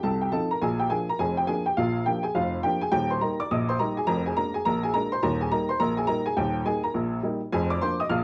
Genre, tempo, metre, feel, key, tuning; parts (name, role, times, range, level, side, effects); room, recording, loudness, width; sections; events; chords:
ragtime piano; 104 BPM; 2/4; swing 60% on 16ths; Eb major; A4 = 440 Hz
warm upright piano; solo; 0.0-8.2 s; Eb1 to F6; -26 LUFS; equal
moderate studio reverb, RT60 0.8 s; dark, warm production; -26 LUFS; mono
0.0-8.2 A section
0.0 F7; 0.6 Bb7; 2.9 Eb; 4.1 Bb7/F; 5.2 Eb; 7.5 Bb7/F